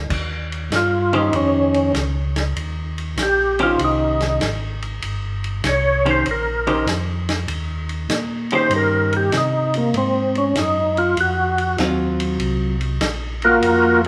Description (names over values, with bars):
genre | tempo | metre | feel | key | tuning
soul jazz organ trio | 98 BPM | 4/4 | swing 67% on 8ths | Eb mixolydian | A4 = 441 Hz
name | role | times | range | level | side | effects
mellow tonewheel organ | bass | 0.0-14.1 s | G1 to C3 | -26 LUFS | equal | slow rotary speaker
warm soul drum kit | drums | 0.1-14.1 s | crash cymbal, hi-hat, kick drum, ride cymbal, snare drum | -29 LUFS | equal | none
overdriven tonewheel organ | melody | 0.8-14.0 s | Bb3 to Db5 | -20 LUFS | equal | chorus vibrato, slow rotary speaker
vintage hollow-body jazz guitar | accompaniment | 1.1-12.7 s | Eb3 to C5 | -25 LUFS | equal | none
room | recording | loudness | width
wet large studio reverb, RT60 1.3 s | band playing live in one room | -20 LUFS | mono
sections
0.1-14.1 A section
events
tonewheel organ solo 0.1-14.1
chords
0.1 Eb13; 10.0 Ab13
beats
| 0.11 0.72 1.34 1.95 | 2.57 3.18 3.80 4.41 | 5.03 5.64 6.26 6.88 | 7.49 8.11 8.72 9.34 | 9.95 10.57 11.18 11.79 | 12.41 13.02 13.64